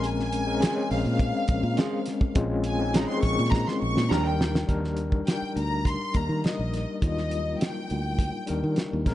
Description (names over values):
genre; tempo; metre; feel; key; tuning
lush 1970s-style soul; 103 BPM; 4/4; straight; Eb major; A4 = 440 Hz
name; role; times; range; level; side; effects
rich studio violin section; melody; 0.0-8.8 s; Eb5 to Db6; -32 LUFS; left 1 dB; none
overdriven tine electric piano; accompaniment; 0.0-9.1 s; F3 to C5; -29 LUFS; left 3 dB; medium tremolo
fingered electric bass; bass; 0.0-9.1 s; Bb1 to Eb3; -28 LUFS; equal; none
cloth-damped thuddy drum kit; drums; 0.0-9.1 s; hi-hat, kick drum, snare drum; -26 LUFS; equal; none
electric guitar through a small old amp; riff; 0.6-4.3 s; Db4 to C5; -35 LUFS; right 6 dB; none
room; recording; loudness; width
little or no reverb; dark, warm production, nothing above 10.6 kHz; -24 LUFS; side -14 dB against mid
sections
0.0-4.7 A section; 4.7-9.1 B section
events
violin section solo 0.0-4.7; drum fill 3.5-4.7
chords
0.0 Bbm9; 4.1 Ebmaj7